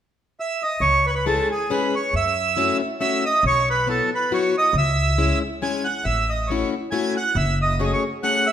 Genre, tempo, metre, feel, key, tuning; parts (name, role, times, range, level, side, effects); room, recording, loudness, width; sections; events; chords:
musette waltz; 138 BPM; 3/4; swing 55% on 8ths, rubato; C# minor; A4 = 442 Hz
accordion; melody; 0.4-8.5 s; G#4 to G#5; -21 LUFS; right 2 dB
upright bass; bass; 0.8-7.9 s; F#1 to F#2; -24 LUFS; equal
picked plugged-in steel-string acoustic guitar; accompaniment; 1.3-8.5 s; F#3 to G#4; -25 LUFS; left 5 dB
moderate recital hall reverb, RT60 1.4 s; minimal, uncompressed stereo recording; -19 LUFS; side -9 dB against mid
0.8-8.5 A section
0.0 N.C.; 0.8 C#m; 2.1 F#m7; 3.4 Bsus4; 4.7 C#m; 6.1 A6; 7.4 F#madd9